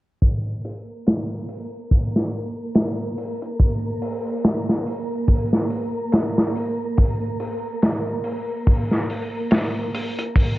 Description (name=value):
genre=trip hop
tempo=71 BPM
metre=4/4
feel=swing 58% on 16ths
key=unclear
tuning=A4 = 440 Hz
part: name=crunchy breakbeat drum kit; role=drums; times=0.2-10.6 s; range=hi-hat, kick drum, snare drum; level=-20 LUFS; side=equal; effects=none
part: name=wind-like tuned noise texture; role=texture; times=0.7-10.6 s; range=Bb3 to Bb4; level=-28 LUFS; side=right 1 dB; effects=built-in reverb
room=light reverb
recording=worn, warbling old tape, cassette tape, warbly pitch drift, low-pass filter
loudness=-20 LUFS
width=side -17 dB against mid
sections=0.2-10.6 A section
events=filter sweep 0.2-10.6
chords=none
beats=| 0.22 1.06 1.91 2.75 | 3.60 4.45 5.29 6.13 | 6.98 7.83 8.67 9.52 | 10.36